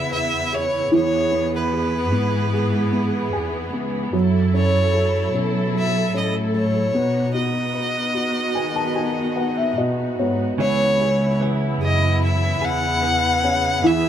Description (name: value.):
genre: pop.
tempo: 74 BPM.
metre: 4/4.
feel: straight.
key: C# minor.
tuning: A4 = 439 Hz.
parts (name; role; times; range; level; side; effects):
warm violin; melody; 0.0-14.1 s; B4 to F#5; -23 LUFS; equal; none.
dark upright piano; accompaniment; 0.0-14.1 s; E3 to A5; -24 LUFS; equal; none.
warm symphonic string section; sustained chords; 0.0-14.1 s; C#3 to A4; -25 LUFS; right 1 dB; none.
dark studio cello section; bass; 0.0-14.1 s; C#2 to D#3; -24 LUFS; equal; none.
direct-recorded clean electric guitar; arpeggios; 10.6-14.1 s; C#3 to G#4; -29 LUFS; right 4 dB; none.
room: moderate small room reverb, RT60 0.5 s.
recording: band playing live in one room.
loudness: -18 LUFS.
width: side -10 dB against mid.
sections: 0.0-10.6 A section; 10.6-14.1 B section.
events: upright piano fill 2.9-4.1, 8.1-10.6.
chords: 0.0 C#m7; 0.9 E; 4.1 F#m7; 6.9 B; 10.6 C#m7.